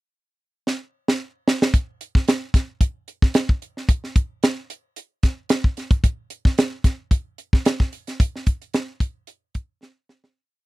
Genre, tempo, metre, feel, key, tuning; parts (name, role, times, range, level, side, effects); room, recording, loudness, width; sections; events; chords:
funk; 111 BPM; 4/4; straight
tight funk drum kit; drums; 0.7-10.4 s; hi-hat, kick drum, snare drum; -18 LUFS; equal
little or no reverb; dry, close 1970s-style studio recording; -20 LUFS; side -20 dB against mid
0.0-1.7 pickup bar; 1.7-10.4 breakdown
drum fill 0.7-1.7, 9.8-10.4; fade-out 8.2-10.4